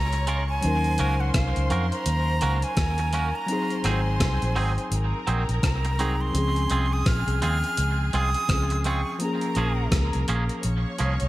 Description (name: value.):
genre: lovers rock reggae.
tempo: 84 BPM.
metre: 4/4.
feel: swing 60% on 16ths.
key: Db major.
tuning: A4 = 441 Hz.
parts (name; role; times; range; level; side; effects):
breathy bright jazz flute; melody; 0.0-9.9 s; F5 to F6; -30 LUFS; right 2 dB; tape echo.
clear studio string section; second line; 0.0-11.3 s; Ab4 to Db6; -34 LUFS; left 1 dB; none.
mellow tine electric piano; accompaniment; 0.0-11.3 s; F3 to Bb4; -31 LUFS; left 2 dB; none.
vintage muted fingered electric bass; bass; 0.0-11.3 s; Ab1 to F2; -25 LUFS; equal; none.
twangy electric guitar; stabs; 0.1-11.1 s; F3 to Bb4; -32 LUFS; right 4 dB; spring reverb, tape echo.
gated 80s digital drum machine; drums; 0.1-11.3 s; hi-hat, kick drum, rim click; -28 LUFS; equal; gated reverb.
room: digital ambience.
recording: none.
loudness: -22 LUFS.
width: side -16 dB against mid.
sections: 0.0-11.3 A section.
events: none.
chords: 0.0 Bbm7; 0.6 Ebm7; 3.5 Ab7; 6.3 Dbmaj7; 9.2 Bbm7.